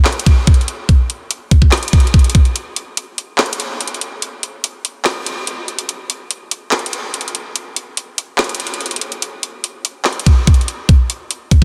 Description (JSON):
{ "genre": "hip hop", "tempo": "144 BPM", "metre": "4/4", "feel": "half-time", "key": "none", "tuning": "none", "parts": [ { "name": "trap drum kit", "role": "drums", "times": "0.0-11.6 s", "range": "handclaps, hi-hat, kick drum, snare drum", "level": "-15 LUFS", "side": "equal", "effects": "vintage 12-bit sampler grit" } ], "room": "light reverb, digital ambience", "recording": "dense, heavily limited modern master", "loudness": "-17 LUFS", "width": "mono", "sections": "0.0-11.6 A section", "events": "break 2.6-9.2, 9.2-10.1", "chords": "none", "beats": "0.06 0.47 | 0.89 1.31 1.72 2.14 | 2.56 2.97 3.39 3.81 | 4.22 4.64 5.06 5.47 | 5.89 6.31 6.72 7.14 | 7.56 7.97 8.39 8.81 | 9.22 9.64 10.06 10.47 | 10.89 11.31" }